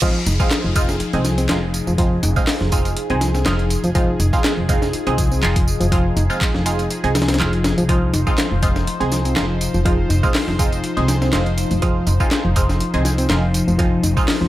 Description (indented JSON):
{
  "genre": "breakbeat, breaks",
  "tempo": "122 BPM",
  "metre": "4/4",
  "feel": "swing 54% on 16ths",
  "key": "F minor pentatonic",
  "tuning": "A4 = 440 Hz",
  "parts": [
    { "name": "phased analog pad", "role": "sustained chords", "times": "0.2-14.5 s", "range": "F3 to C5", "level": "-25 LUFS", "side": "left 2 dB", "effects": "phaser, chorus, sidechain pumping" },
    { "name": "reed electric piano", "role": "riff", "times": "0.0-14.5 s", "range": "F3 to Eb4", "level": "-24 LUFS", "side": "equal", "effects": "fast tremolo, tube saturation, tape echo" },
    { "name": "band-passed chord stab", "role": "stabs", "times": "0.0-14.5 s", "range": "Ab3 to Ab4", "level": "-25 LUFS", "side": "right 3 dB", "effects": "phaser, tape echo" },
    { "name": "breakbeat sampler-style drum kit", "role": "drums", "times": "0.0-14.5 s", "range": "crash cymbal, hi-hat, kick drum, snare drum", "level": "-20 LUFS", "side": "equal", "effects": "high-pass filter on hats, high-pass filter on kick, high-pass filter on snare, high-pass filter on cymbals" },
    { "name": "electronic tambourine and handclaps", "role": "drums", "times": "0.0-14.4 s", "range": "none", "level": "-28 LUFS", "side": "right 1 dB", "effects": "overdrive, high-pass filter on perc, high-pass filter on snare" },
    { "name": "downlifter", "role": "sound effects", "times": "0.0-4.0 s", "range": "none", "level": "-31 LUFS", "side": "equal", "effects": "none" },
    { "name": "upright bass", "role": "bass", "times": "0.3-14.5 s", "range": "F1 to C2", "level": "-20 LUFS", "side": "equal", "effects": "tube saturation" }
  ],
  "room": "digital ambience",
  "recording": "none",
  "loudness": "-16 LUFS",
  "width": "side -15 dB against mid",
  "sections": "0.0-14.5 A section",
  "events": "drop 0.0-14.5",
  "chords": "0.0 Fm7"
}